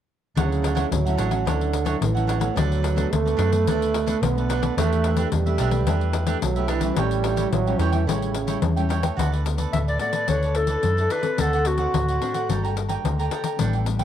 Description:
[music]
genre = samba and choro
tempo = 109 BPM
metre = 4/4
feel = straight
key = D major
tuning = A4 = 440 Hz
[part]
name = mellow trombone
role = second line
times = 0.4-8.9 s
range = C#3 to B3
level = -26 LUFS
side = right 8 dB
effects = cassette tape
[part]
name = cavaquinho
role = accompaniment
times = 0.4-14.0 s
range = D4 to Bb5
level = -30 LUFS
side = right 9 dB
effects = cassette tape
[part]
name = nylon-string guitar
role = accompaniment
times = 0.4-14.0 s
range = A2 to A4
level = -30 LUFS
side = left 8 dB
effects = cassette tape
[part]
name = hollow-body short-scale fingered electric bass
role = bass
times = 0.4-14.0 s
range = G1 to F#2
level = -24 LUFS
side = equal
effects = none
[part]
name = pandeiro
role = percussion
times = 0.4-14.0 s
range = none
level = -28 LUFS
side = left 8 dB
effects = none
[part]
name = warm clarinet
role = melody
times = 9.7-12.8 s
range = F#4 to E5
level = -25 LUFS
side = left 1 dB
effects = cassette tape, analog delay
[sound]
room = moderate spring reverb, RT60 1.1 s, studio reverb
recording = home recording on cassette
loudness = -20 LUFS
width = side -10 dB against mid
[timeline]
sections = 0.4-9.2 A section; 9.2-14.0 B section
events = none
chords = 0.4 Dmaj9; 2.6 Bm7/D; 4.8 Em7; 7.0 A7; 9.2 D6; 10.3 Bm11/D; 11.4 D7; 12.5 Gmadd9

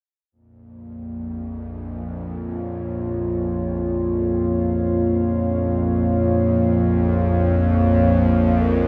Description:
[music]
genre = ambient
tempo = free time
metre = none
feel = none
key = Bb minor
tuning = A4 = 440 Hz
[part]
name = dark analog pad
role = sustained chords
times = 0.3-8.9 s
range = Bb3 to F5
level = -24 LUFS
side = equal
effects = chorus
[part]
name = bowed-like drone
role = drone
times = 0.9-8.9 s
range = Bb1 to F2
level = -24 LUFS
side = equal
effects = built-in reverb
[part]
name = bronze singing bowl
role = texture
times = 8.6-8.9 s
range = Bb4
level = -27 LUFS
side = equal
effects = none
[sound]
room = wet cathedral reverb, RT60 6.6 s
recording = in a vast, echoing space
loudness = -20 LUFS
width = mono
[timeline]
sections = 0.3-8.9 A section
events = none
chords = 0.3 Bbm

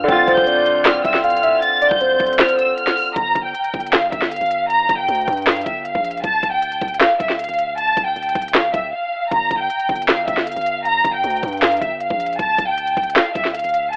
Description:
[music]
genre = hip hop, trap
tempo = 156 BPM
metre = 4/4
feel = half-time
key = G dorian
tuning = A4 = 438 Hz
[part]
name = warm studio violin section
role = melody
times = 0.0-14.0 s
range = E5 to A6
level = -18 LUFS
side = equal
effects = low-pass filter, analog delay
[part]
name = soft octave-layered synth lead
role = second line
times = 0.0-2.7 s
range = C5 to F5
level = -17 LUFS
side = equal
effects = chorus, analog delay
[part]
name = bright concert grand piano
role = accompaniment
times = 0.0-3.2 s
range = D3 to F4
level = -20 LUFS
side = equal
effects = low-pass filter
[part]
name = long sustained 808-style bass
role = bass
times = 0.0-14.0 s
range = D1 to G2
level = -32 LUFS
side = equal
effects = none
[part]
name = trap drum kit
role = drums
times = 0.1-14.0 s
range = handclaps, hi-hat, kick drum, snare drum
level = -18 LUFS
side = equal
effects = overdrive
[sound]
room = light reverb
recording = dry, gritty hardware recording, telephone sound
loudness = -15 LUFS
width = side -38 dB against mid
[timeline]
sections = 0.0-3.2 A section; 3.2-14.0 B section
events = kick muted 2.4-3.2; break 8.9-9.3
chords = 0.1 Dm7; 3.2 G7(no3); 6.2 Dm; 9.3 G7(no3); 12.4 Dm

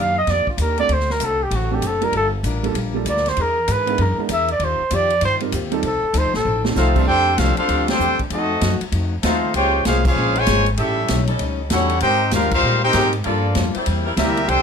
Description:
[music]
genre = jazz, big band swing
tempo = 194 BPM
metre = 4/4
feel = swing 63% on 8ths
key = unclear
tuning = A4 = 440 Hz
[part]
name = breathy trumpet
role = melody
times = 0.0-6.6 s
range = F4 to F5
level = -20 LUFS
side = right 1 dB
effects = none
[part]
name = picked plugged-in steel-string acoustic guitar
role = accompaniment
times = 0.0-14.6 s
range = A2 to C5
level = -28 LUFS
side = left 7 dB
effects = none
[part]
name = upright bass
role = bass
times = 0.0-14.6 s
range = F#1 to Bb2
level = -22 LUFS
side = equal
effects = none
[part]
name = swinging big-band drum kit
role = drums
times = 0.3-14.6 s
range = crash cymbal, hi-hat, kick drum, ride cymbal, snare drum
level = -26 LUFS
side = equal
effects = none
[part]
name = warm concert grand piano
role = accompaniment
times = 0.8-7.1 s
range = G3 to Bb4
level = -25 LUFS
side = right 8 dB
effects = none
[part]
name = clear trumpet section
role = melody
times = 6.8-14.6 s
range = Bb3 to Ab5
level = -19 LUFS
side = left 1 dB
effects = none
[part]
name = clear trombone section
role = second line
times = 6.8-14.6 s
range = Db3 to G4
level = -24 LUFS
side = right 2 dB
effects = none
[part]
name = clear saxophone section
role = sustained chords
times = 7.6-14.1 s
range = Gb3 to C5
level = -27 LUFS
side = left 1 dB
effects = none
[sound]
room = light reverb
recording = none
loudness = -16 LUFS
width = side -6 dB against mid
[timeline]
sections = 0.0-7.1 A section; 7.1-14.6 B section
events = trumpet solo 0.0-7.1; drum fill 6.5-6.8; band accent 7.8, 10.0, 12.5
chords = 0.0 Ebmaj7; 0.9 D7; 2.1 Gm7; 3.4 E7#11; 4.6 Eb69; 5.8 F7; 7.1 F69; 8.3 F7b9; 9.5 Bbm9; 10.8 A7#11; 12.0 Abmaj9; 13.2 Gm9; 13.9 C7

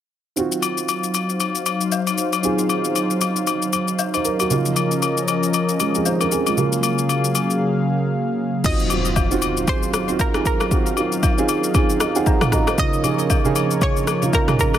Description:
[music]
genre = amapiano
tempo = 116 BPM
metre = 4/4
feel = swing 58% on 16ths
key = Eb dorian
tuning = A4 = 440 Hz
[part]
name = dark grand piano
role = accompaniment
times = 0.4-14.8 s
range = Db3 to Bb5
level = -23 LUFS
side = right 4 dB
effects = none
[part]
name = warm analog pad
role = sustained chords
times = 0.4-14.8 s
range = Db3 to F5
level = -23 LUFS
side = left 1 dB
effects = chorus, sidechain pumping
[part]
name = deep house drum kit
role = drums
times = 0.4-14.8 s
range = crash cymbal, kick drum, rim click, shaker, toms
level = -21 LUFS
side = left 1 dB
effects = overdrive
[part]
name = agogo bells and woodblock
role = percussion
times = 0.6-14.8 s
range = none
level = -25 LUFS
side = left 9 dB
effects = none
[part]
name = impact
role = sound effects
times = 8.6-10.7 s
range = none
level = -27 LUFS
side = equal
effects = none
[part]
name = analog pluck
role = melody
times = 8.7-14.8 s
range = Bb4 to Eb5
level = -26 LUFS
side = right 2 dB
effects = chorus, digital delay
[sound]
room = light reverb, digital ambience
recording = dense, heavily limited modern master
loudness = -17 LUFS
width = side -10 dB against mid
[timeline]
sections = 0.4-8.6 A section; 8.6-14.8 B section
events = impact 8.6-10.7; grand piano fill 11.7-12.8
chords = 0.4 Ebm69; 4.5 Db69; 6.6 Gbmaj9/Db; 8.6 Ebm69; 12.8 Db69

